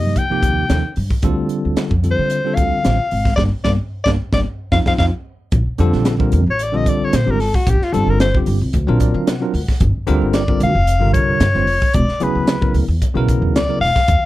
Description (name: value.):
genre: electric jazz fusion.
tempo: 112 BPM.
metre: 4/4.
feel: swing 53% on 16ths.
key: F major.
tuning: A4 = 439 Hz.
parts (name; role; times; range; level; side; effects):
breathy soprano saxophone; melody; 0.0-14.3 s; F4 to G5; -19 LUFS; left 3 dB; slapback echo.
bell-like tine electric piano; accompaniment; 0.0-13.9 s; C3 to F#5; -20 LUFS; right 1 dB; medium stereo tremolo.
upright bass; bass; 0.0-14.3 s; E1 to D3; -18 LUFS; equal; none.
crisp fusion drum kit; drums; 0.2-14.2 s; hi-hat, kick drum, snare drum; -19 LUFS; equal; none.
room: little or no reverb.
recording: none.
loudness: -14 LUFS.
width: side -16 dB against mid.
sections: 0.0-5.5 A section; 5.5-14.3 B section.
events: band accent 3.4-5.5; drum fill 5.0-5.5; soprano saxophone solo 5.5-14.3; tine electric piano fill 8.7-9.8.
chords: 0.0 Ebadd9; 1.2 Dm7; 3.4 Gm; 4.5 F5; 5.5 Bbmaj9; 7.7 G9sus4; 8.7 D7alt; 9.8 Gm7; 12.0 E7#11.